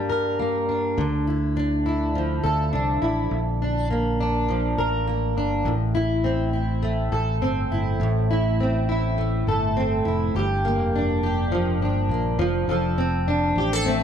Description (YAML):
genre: acoustic pop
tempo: 102 BPM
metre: 4/4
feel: swing 55% on 16ths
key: D minor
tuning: A4 = 440 Hz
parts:
  - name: fingerpicked plugged-in steel-string acoustic guitar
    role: accompaniment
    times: 0.0-14.0 s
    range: G2 to Bb4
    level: -22 LUFS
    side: equal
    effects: double-tracked left and right
  - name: fingered electric bass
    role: bass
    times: 1.0-14.0 s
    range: F1 to D2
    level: -26 LUFS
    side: equal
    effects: none
  - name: warm cello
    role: second line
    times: 13.9-14.0 s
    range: A3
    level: -24 LUFS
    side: left 11 dB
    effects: none
room: moderate echo chamber reverb, RT60 1.5 s, studio reverb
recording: none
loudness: -21 LUFS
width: side -8 dB against mid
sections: 0.0-10.3 A section; 10.3-14.0 B section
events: none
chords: 0.0 Gm; 1.0 Dmadd9; 3.3 Bb; 5.7 Am; 10.3 Gm7; 12.4 Dm7/F